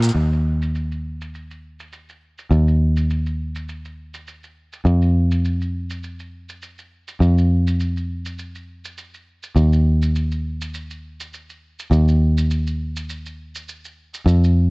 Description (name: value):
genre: sunset chillout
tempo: 102 BPM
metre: 4/4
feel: swing 55% on 16ths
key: unclear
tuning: A4 = 438 Hz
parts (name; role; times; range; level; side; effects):
- fingered electric bass; bass; 0.0-14.7 s; Eb2 to F2; -17 LUFS; equal; none
- electronic hi-hat and shaker; drums; 0.0-14.5 s; none; -36 LUFS; right 2 dB; low-pass filter on hats, low-pass filter on snare, low-pass filter on perc, low-pass filter on room
room: little or no reverb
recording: worn, warbling old tape, cassette tape, warbly pitch drift, nothing above 10.9 kHz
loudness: -17 LUFS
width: side -34 dB against mid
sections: 0.1-14.7 A section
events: none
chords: none